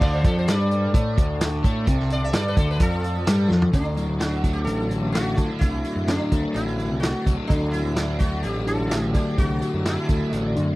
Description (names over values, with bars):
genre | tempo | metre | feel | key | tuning
psychedelic rock | 128 BPM | 4/4 | straight | D mixolydian | A4 = 445 Hz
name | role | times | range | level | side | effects
sitar | melody | 0.0-10.5 s | D4 to E5 | -30 LUFS | right 1 dB | tape echo
combo organ | sustained chords | 0.0-3.7 s | A4 to A5 | -37 LUFS | right 4 dB | none
crunchy overdriven guitar | riff | 0.0-10.8 s | C3 to D4 | -24 LUFS | left 1 dB | rotary speaker
growling picked electric bass | bass | 0.0-10.8 s | A1 to D3 | -26 LUFS | equal | overdrive
tanpura | drone | 0.0-10.4 s | D2 to D3 | -39 LUFS | equal | none
vintage drum kit | drums | 0.0-10.7 s | crash cymbal, hi-hat, kick drum, snare drum, toms | -22 LUFS | equal | none
tambourine | percussion | 0.5-10.6 s | none | -45 LUFS | right 15 dB | none
room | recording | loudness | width
little or no reverb | dry, close 1970s-style studio recording | -20 LUFS | side -19 dB against mid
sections
0.0-3.7 A section; 3.7-10.8 B section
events
sitar solo 0.0-3.7; drum fill 3.5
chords
0.0 D5; 3.7 D